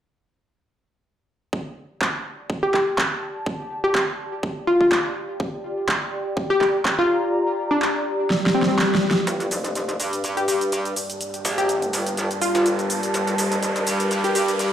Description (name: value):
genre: bass house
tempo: 124 BPM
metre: 4/4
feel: swing 55% on 16ths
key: G minor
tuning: A4 = 440 Hz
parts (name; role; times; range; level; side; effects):
- electronic kick drum; drums; 1.5-7.0 s; none; -28 LUFS; equal; overdrive, high-pass filter on kick
- warbly tape-like pad; texture; 3.2-14.7 s; G4 to Bb5; -28 LUFS; equal; chorus, built-in reverb, sidechain pumping
- big-room dance drum kit; drums; 2.0-14.7 s; handclaps, hi-hat, shaker, snare drum; -24 LUFS; right 1 dB; overdrive, high-pass filter on snare, high-pass filter on hats, high-pass filter on perc
- glassy wavetable pluck; melody; 2.6-14.4 s; C4 to G4; -22 LUFS; left 1 dB; chorus, tape echo
- swell and riser; sound effects; 8.4-14.7 s; none; -29 LUFS; equal; none
- dark analog pad; sustained chords; 9.3-14.7 s; G3 to D5; -28 LUFS; left 1 dB; chorus, sidechain pumping
- metallic wobble bass; bass; 9.3-14.7 s; F1 to G2; -25 LUFS; equal; chorus, tube saturation, sidechain pumping, high-pass filter
room: wet digital room reverb, RT60 1.2 s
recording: played on a big sound system in a bare room, large studio reverb, high-pass filter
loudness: -20 LUFS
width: side -10 dB against mid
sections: 1.5-9.3 A section; 9.3-14.7 B section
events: kick drops out 7.3-9.3; drum fill 8.3-9.3; swell 8.4-9.3; build-up 9.3-14.7; riser 9.3-14.7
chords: 1.5 Gm